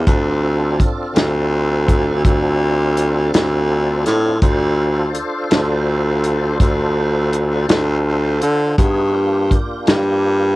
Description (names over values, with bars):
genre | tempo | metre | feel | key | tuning
slow blues | 55 BPM (dotted quarters) | 12/8 | straight | D minor | A4 = 440 Hz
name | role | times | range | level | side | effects
tonewheel organ | sustained chords | 0.0-10.6 s | Bb3 to C5 | -23 LUFS | equal | slow rotary speaker, chorus vibrato, cassette tape
bright baritone saxophone | bass | 0.0-10.6 s | D2 to D3 | -16 LUFS | equal | none
warm soul drum kit | drums | 0.1-10.0 s | hi-hat, kick drum, snare drum | -15 LUFS | equal | none
room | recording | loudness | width
little or no reverb | home recording on cassette | -14 LUFS | side -19 dB against mid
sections
0.0-10.6 A section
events
none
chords
0.1 Dm7; 8.8 Gm7